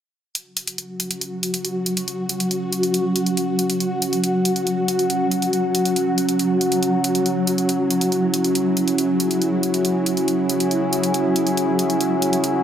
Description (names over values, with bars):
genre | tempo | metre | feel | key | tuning
psychedelic trance | 139 BPM | 4/4 | straight | unclear | A4 = 438 Hz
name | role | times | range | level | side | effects
swarming drone | sustained chords | 0.9-12.6 s | F#3 to F#4 | -22 LUFS | equal | built-in reverb
electronic hi-hat | drums | 0.4-12.5 s | none | -25 LUFS | equal | overdrive
deep dark ambient pad | texture | 1.8-12.6 s | C#4 to F#5 | -22 LUFS | right 1 dB | chorus, built-in reverb
room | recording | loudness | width
moderate digital room reverb, RT60 1.0 s | none | -18 LUFS | side -9 dB against mid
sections
0.4-12.6 A section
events
filter sweep on synth drone 0.4-12.6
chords
0.4 F#5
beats
| 0.35 0.78 1.21 1.65 | 2.08 2.51 2.94 3.37 | 3.80 4.24 4.67 5.10 | 5.53 5.96 6.39 6.83 | 7.26 7.69 8.12 8.55 | 8.98 9.42 9.85 10.28 | 10.71 11.14 11.57 12.01 | 12.44